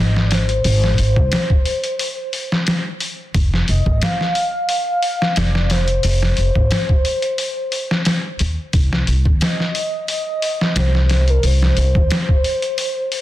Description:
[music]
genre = trip hop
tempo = 89 BPM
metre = 4/4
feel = swing 54% on 16ths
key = unclear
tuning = A4 = 442 Hz
[part]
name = pure breathy sine lead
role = melody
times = 0.0-13.2 s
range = Bb4 to F5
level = -22 LUFS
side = equal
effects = analog chorus, tape echo
[part]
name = upright bass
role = bass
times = 0.0-12.1 s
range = F1 to Eb2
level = -16 LUFS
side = equal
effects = tube saturation
[part]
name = trip hop sampler-style drum kit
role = drums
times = 0.2-13.2 s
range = hi-hat, kick drum, snare drum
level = -18 LUFS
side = equal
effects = small room ambience
[sound]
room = little or no reverb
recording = dense, heavily limited modern master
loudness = -15 LUFS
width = side -15 dB against mid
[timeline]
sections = 0.0-13.2 A section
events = none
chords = 0.0 Ab; 3.3 F5; 8.7 Cm

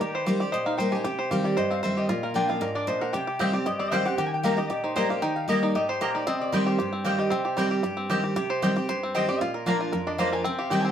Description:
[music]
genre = bluegrass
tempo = 230 BPM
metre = 4/4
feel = straight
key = C minor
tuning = A4 = 438 Hz
[part]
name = bluegrass banjo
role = melody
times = 0.0-10.9 s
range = G3 to C5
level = -29 LUFS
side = right 1 dB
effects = none
[part]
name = lap resonator guitar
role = second line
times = 0.0-10.9 s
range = Bb4 to Ab5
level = -30 LUFS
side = left 2 dB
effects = none
[part]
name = picked steel-string acoustic guitar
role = accompaniment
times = 0.0-10.9 s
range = F2 to G4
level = -27 LUFS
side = equal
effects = none
[part]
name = mandolin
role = stabs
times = 3.4-10.8 s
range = Bb3 to Bb5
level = -30 LUFS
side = equal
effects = none
[sound]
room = wet studio reverb, RT60 0.6 s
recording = heard from further back in the room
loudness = -23 LUFS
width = side -9 dB against mid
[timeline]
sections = 0.0-10.9 A section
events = resonator guitar played with a steel bar solo 0.0-10.9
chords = 0.0 Eb; 1.1 Cm; 2.1 Bb; 3.1 Cm; 4.2 Eb; 6.3 Cm; 9.4 Bb

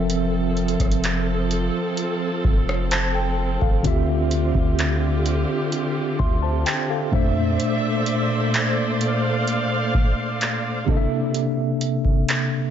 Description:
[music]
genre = contemporary R&B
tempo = 64 BPM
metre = 4/4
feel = straight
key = D minor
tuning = A4 = 442 Hz
[part]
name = mellow tine electric piano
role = accompaniment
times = 0.0-12.7 s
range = Bb2 to C6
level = -23 LUFS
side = equal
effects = medium stereo tremolo
[part]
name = warm studio string section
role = sustained chords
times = 0.0-11.3 s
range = Bb2 to F5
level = -26 LUFS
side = right 2 dB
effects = none
[part]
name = long sustained 808-style bass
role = bass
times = 0.0-7.6 s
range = F1 to F2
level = -24 LUFS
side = equal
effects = none
[part]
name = booming analog drum machine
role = drums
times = 0.1-12.5 s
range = handclaps, hi-hat, kick drum, rim click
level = -23 LUFS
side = equal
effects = none
[sound]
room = light reverb, digital ambience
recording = nothing above 7.6 kHz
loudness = -19 LUFS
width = side -9 dB against mid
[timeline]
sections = 0.0-12.7 A section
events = none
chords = 0.0 Fmaj7; 3.8 Dm11; 7.1 Bbmaj9#11; 10.9 C13

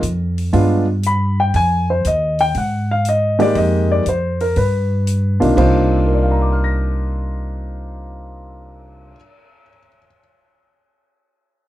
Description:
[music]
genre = jazz piano trio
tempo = 119 BPM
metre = 4/4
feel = swing 69% on 8ths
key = C minor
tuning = A4 = 440 Hz
[part]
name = upright bass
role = bass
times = 0.0-9.1 s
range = B1 to Ab2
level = -18 LUFS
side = equal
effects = none
[part]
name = swinging big-band drum kit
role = drums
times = 0.0-9.5 s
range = crash cymbal, cymbal swell, hi-hat, kick drum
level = -32 LUFS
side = right 1 dB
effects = none
[part]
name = warm grand piano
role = melody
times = 0.5-10.2 s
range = C3 to Bb6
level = -18 LUFS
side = left 1 dB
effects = none
[sound]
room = light reverb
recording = none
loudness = -14 LUFS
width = side -14 dB against mid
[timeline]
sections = 0.0-5.6 A section; 5.6-9.6 B section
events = none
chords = 0.0 N.C.; 0.5 G7b9; 1.5 Ebsus2; 2.5 Ab5; 3.6 Fm11; 4.6 G; 5.6 Cm11

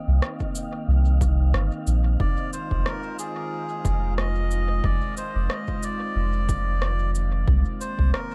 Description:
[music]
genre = ambient dub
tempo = 91 BPM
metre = 4/4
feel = swing 55% on 16ths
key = F dorian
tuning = A4 = 441 Hz
[part]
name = warbly tape-like pad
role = sustained chords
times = 0.0-8.3 s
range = Eb3 to G5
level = -37 LUFS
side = equal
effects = chorus, built-in reverb
[part]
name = wind-like tuned noise texture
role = texture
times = 0.0-8.3 s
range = Eb4 to F5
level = -42 LUFS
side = equal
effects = built-in reverb
[part]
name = soft dub sub bass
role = bass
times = 0.1-8.1 s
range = F1 to C2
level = -23 LUFS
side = equal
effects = none
[part]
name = electronic rim click and shaker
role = drums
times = 0.2-8.3 s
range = none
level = -35 LUFS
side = equal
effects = dub echo
[part]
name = electronic kick drum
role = drums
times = 0.4-8.1 s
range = none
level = -30 LUFS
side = equal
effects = none
[part]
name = melodica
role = melody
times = 2.2-8.3 s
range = Ab4 to Eb5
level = -34 LUFS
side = equal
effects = dub echo
[sound]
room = digital ambience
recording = echo-heavy mix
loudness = -24 LUFS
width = mono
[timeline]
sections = 0.0-8.3 A section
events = none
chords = 0.0 Cm7; 2.2 Fm7; 7.5 Cm7

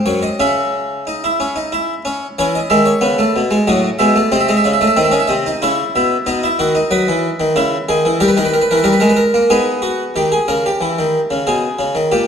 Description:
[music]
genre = classical, baroque-style 3-part fugue for harpsichord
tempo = 92 BPM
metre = 3/4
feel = straight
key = C# minor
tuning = A4 = 442 Hz
[part]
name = harpsichord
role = solo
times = 0.0-12.3 s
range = F#2 to E5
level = -13 LUFS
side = equal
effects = none
[sound]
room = wet recital hall reverb, RT60 1.5 s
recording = dark, warm production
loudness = -13 LUFS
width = side -7 dB against mid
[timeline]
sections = 0.0-2.4 A section; 2.4-10.2 B section; 10.2-12.3 A section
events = none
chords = 0.4 C#m; 3.7 F#m/A; 4.3 G#/B#; 5.6 C#m; 6.3 Badd11; 7.5 C#m; 8.2 D#; 9.5 G#m/B; 10.2 D#7; 11.5 G#m/B

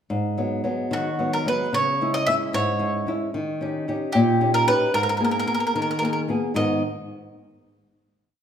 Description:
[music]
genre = italian folk, Italian serenade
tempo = 74 BPM (dotted quarters)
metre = 6/8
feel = straight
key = G# minor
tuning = A4 = 439 Hz
[part]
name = flamenco guitar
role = accompaniment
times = 0.1-6.8 s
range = G#2 to A#4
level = -23 LUFS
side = equal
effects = none
[part]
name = bowl-back mandolin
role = melody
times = 0.9-6.8 s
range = F#4 to E5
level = -23 LUFS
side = equal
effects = none
[sound]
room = wet recital hall reverb, RT60 1.6 s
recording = recorded in a church or concert hall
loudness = -20 LUFS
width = side -8 dB against mid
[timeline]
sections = 0.1-6.6 A section; 6.6-8.2 final chord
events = none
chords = 0.1 G#m7; 1.7 C#m; 3.3 D#7; 4.9 G#madd9

